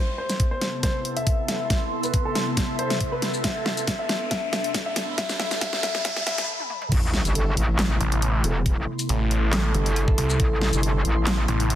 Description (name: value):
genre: heavy wobble dubstep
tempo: 138 BPM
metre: 4/4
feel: swing 53% on 16ths, half-time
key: A minor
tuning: A4 = 440 Hz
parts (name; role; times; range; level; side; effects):
- dark grand piano; melody; 0.0-6.4 s; A4 to E5; -30 LUFS; left 2 dB; dub echo
- evolving wavetable pad; sustained chords; 0.2-11.8 s; C3 to A4; -32 LUFS; equal; ensemble chorus, built-in reverb, sidechain pumping
- riser and sub drop; sound effects; 0.0-8.7 s; none; -34 LUFS; equal; none
- ethereal airy pad; texture; 1.1-11.8 s; A4 to C6; -34 LUFS; right 1 dB; ensemble chorus, built-in reverb, phaser, sidechain pumping
- dubstep drum kit; drums; 0.3-11.8 s; crash cymbal, handclaps, hi-hat, shaker, snare drum, toms; -27 LUFS; equal; none
- electronic kick drum; drums; 0.4-10.5 s; none; -24 LUFS; equal; none
- metallic wobble bass; bass; 6.9-11.5 s; E1 to A1; -23 LUFS; equal; chorus, overdrive
- mellow brass ensemble; stabs; 7.4-11.0 s; A3 to A4; -32 LUFS; right 4 dB; dub echo
- snarling distorted saw bass; bass; 8.0-11.8 s; A1 to C2; -22 LUFS; equal; distortion, overdrive
room: light reverb, digital ambience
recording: dense, heavily limited modern master, high-pass filter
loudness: -21 LUFS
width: side -12 dB against mid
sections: 0.0-6.9 A section; 6.9-11.8 B section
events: build-up 0.0-6.9; drum fill 0.0-6.5, 6.6-6.9; riser 0.0-6.5; filter sweep 0.0-6.9; stop 6.5-6.9; drop 6.9-11.8; impact 6.9-8.7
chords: 0.0 Amadd9